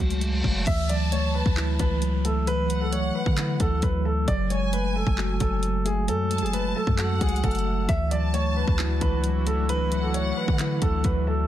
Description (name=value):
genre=hip hop, trap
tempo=133 BPM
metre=4/4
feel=half-time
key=unclear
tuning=A4 = 440 Hz
part: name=mellow tine electric piano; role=accompaniment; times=0.0-11.5 s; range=E3 to F#4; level=-29 LUFS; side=equal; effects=medium stereo tremolo
part: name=warm 808-style bass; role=bass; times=0.0-11.5 s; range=F#1 to D3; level=-26 LUFS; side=equal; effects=none
part: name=reverse cymbal and downlifter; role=sound effects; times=0.0-4.3 s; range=none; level=-35 LUFS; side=left 1 dB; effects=none
part: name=trap drum kit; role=drums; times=0.1-11.2 s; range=crash cymbal, handclaps, hi-hat, kick drum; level=-27 LUFS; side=equal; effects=overdrive
part: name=warm concert grand piano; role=melody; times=0.7-11.5 s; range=G#4 to E5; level=-29 LUFS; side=equal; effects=tape echo
part: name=warm studio violin section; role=second line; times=0.9-11.0 s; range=F#5 to A5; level=-35 LUFS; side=left 1 dB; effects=tape echo
part: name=warm analog pad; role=sustained chords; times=7.9-11.5 s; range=E3 to F#4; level=-37 LUFS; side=right 1 dB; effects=chorus, tremolo
room=little or no reverb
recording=dense, heavily limited modern master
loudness=-22 LUFS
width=side -12 dB against mid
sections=0.7-11.5 A section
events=reverse cymbal 0.0-0.7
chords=0.0 F#madd9; 0.7 Dadd9; 4.3 F#madd9; 7.9 Dadd9